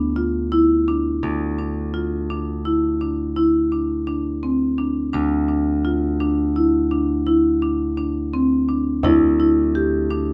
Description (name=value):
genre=contemporary instrumental, chamber music in an uneven meter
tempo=169 BPM (eighths)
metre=11/8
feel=straight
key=unclear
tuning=A4 = 440 Hz
part: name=marimba with medium hard mallets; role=arpeggios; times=0.0-10.3 s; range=C4 to G4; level=-21 LUFS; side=equal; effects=none
part: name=modern bright picked electric bass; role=bass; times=0.0-10.3 s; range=D2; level=-27 LUFS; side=equal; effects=none
part: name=frame drum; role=percussion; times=0.2-1.0, 9.0-9.6 s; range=none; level=-27 LUFS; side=equal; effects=none
room=moderate studio reverb, RT60 0.6 s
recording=none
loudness=-20 LUFS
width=mono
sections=0.0-1.2 A section; 1.2-10.3 B section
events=none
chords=0.0 N.C.; 9.0 Em/D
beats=0.17 0.52 0.88 | 1.23 1.59 1.95 2.30 2.65 3.01 3.37 3.72 4.08 4.43 4.79 | 5.14 5.50 5.85 6.21 6.56 6.92 7.27 7.63 7.98 8.34 8.69 | 9.04 9.40 9.75 10.11